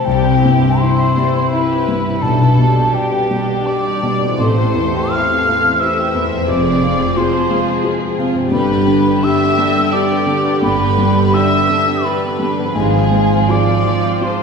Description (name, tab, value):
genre	cinematic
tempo	78-90 BPM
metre	3/4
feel	rubato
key	C major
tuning	A4 = 438 Hz
part	dark studio violin section	second line	0.0-14.4 s	G3 to A4	-23 LUFS	left 2 dB	none
part	mellow hollow concert flute	second line	0.0-14.4 s	G5 to F6	-19 LUFS	equal	none
part	dark studio viola section	accompaniment	0.0-14.4 s	D3 to E4	-22 LUFS	equal	none
part	felt-muted upright piano	accompaniment	0.0-14.4 s	A1 to E5	-18 LUFS	equal	none
part	concert harp	arpeggios	0.0-14.4 s	F2 to C5	-22 LUFS	left 4 dB	none
part	rich studio violin section	melody	0.1-14.4 s	G4 to F5	-24 LUFS	left 4 dB	none
part	warm studio cello section	bass	0.1-13.4 s	F2 to C3	-22 LUFS	right 4 dB	none
part	warm studio double bass section	bass	0.1-13.4 s	F1 to C2	-21 LUFS	right 1 dB	none
room	wet scoring stage reverb, RT60 1.6 s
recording	heard from further back in the room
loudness	-12 LUFS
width	side -5 dB against mid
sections	0.1-14.4 A section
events	none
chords	0.1 C; 2.2 G/B; 4.4 Am7; 6.5 Fm; 8.5 G; 12.7 Fm/Ab